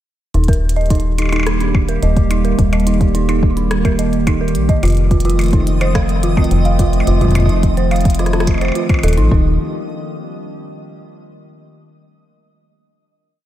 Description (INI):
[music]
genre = IDM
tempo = 107 BPM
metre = 4/4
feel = straight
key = Eb lydian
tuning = A4 = 439 Hz
[part]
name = warbly tape-like pad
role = sustained chords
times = 0.8-9.6 s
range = Eb3 to G4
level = -20 LUFS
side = right 1 dB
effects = chorus, built-in reverb
[part]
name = dark detuned synth bell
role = arpeggios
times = 0.3-9.6 s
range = C4 to F5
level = -22 LUFS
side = right 3 dB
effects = chorus, low-pass filter, tape echo
[part]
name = metallic FM bass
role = bass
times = 0.3-9.6 s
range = Eb1 to Bb1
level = -16 LUFS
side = equal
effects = none
[part]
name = glitchy drum kit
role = drums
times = 0.3-9.3 s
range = hi-hat, percussion blips, rim click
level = -25 LUFS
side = equal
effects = studio reverb, tape echo
[part]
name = glitchy drum kit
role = drums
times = 0.5-9.4 s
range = kick drum, toms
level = -15 LUFS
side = equal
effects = studio reverb
[part]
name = twinkling granular texture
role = texture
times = 5.3-9.3 s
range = Eb5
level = -28 LUFS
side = right 2 dB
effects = built-in reverb, sidechain pumping
[sound]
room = light reverb, digital ambience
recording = none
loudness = -12 LUFS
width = side -12 dB against mid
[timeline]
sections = 0.3-9.3 groove; 9.3-11.6 final chord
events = none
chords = 0.3 Eb; 4.8 F7; 9.3 Ebmaj7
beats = | 0.34 0.90 1.47 2.03 | 2.59 3.15 3.71 4.27 | 4.83 5.39 5.95 6.51 | 7.07 7.63 8.19 8.75 | 9.31